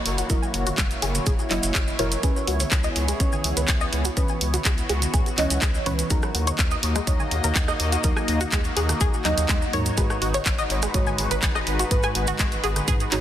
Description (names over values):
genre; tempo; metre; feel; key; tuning
progressive house; 124 BPM; 4/4; straight; G# minor; A4 = 439 Hz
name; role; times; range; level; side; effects
lush unison pad; sustained chords; 0.0-13.2 s; G#3 to D#5; -30 LUFS; left 1 dB; chorus, phaser, sidechain pumping
deep mellow chord stab; stabs; 0.0-13.2 s; G#2 to D#5; -30 LUFS; right 2 dB; chorus, sidechain pumping, dub echo
round analog bass; bass; 0.1-13.2 s; F#1 to G#2; -27 LUFS; equal; sidechain pumping
pop drum kit; drums; 0.1-13.2 s; handclaps, hi-hat, rim click; -27 LUFS; equal; studio reverb, soft clipping on snare
tight sequenced synth; arpeggios; 0.2-13.1 s; G#3 to G#5; -29 LUFS; left 1 dB; chorus, phaser, sidechain pumping, dub echo
maracas; percussion; 0.2-13.1 s; none; -33 LUFS; right 2 dB; none
electronic kick drum; drums; 0.3-13.0 s; none; -24 LUFS; equal; studio reverb
congas; percussion; 0.7-13.0 s; none; -37 LUFS; right 2 dB; none
room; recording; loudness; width
light reverb, digital ambience; dense, heavily limited modern master, faint mains hum; -20 LUFS; side -11 dB against mid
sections
0.0-13.2 A section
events
filter sweep on synth arpeggio sound 0.0-13.2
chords
0.0 F#7; 2.2 C#m7; 6.1 D#m; 10.0 G#m7